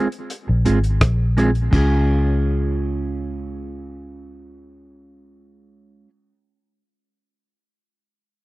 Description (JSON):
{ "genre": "roots reggae", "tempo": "84 BPM", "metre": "4/4", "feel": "straight", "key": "Db major", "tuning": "A4 = 440 Hz", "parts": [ { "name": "mellow electric guitar", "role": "accompaniment", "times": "0.0-6.1 s", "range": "Ab3 to Ab4", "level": "-23 LUFS", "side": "right 2 dB", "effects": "phaser, tape echo" }, { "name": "cloth-damped thuddy drum kit", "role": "drums", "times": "0.1-1.9 s", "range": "crash cymbal, hi-hat, kick drum, rim click", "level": "-20 LUFS", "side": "equal", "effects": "none" }, { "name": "vintage muted fingered electric bass", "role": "bass", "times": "0.5-6.0 s", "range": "Ab1 to Db2", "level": "-20 LUFS", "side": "equal", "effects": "none" } ], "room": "small room ambience", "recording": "dry, close 1970s-style studio recording", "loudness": "-17 LUFS", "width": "side -19 dB against mid", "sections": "0.0-1.7 A section; 1.7-4.6 B section", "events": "none", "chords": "0.0 Fm; 1.7 Db" }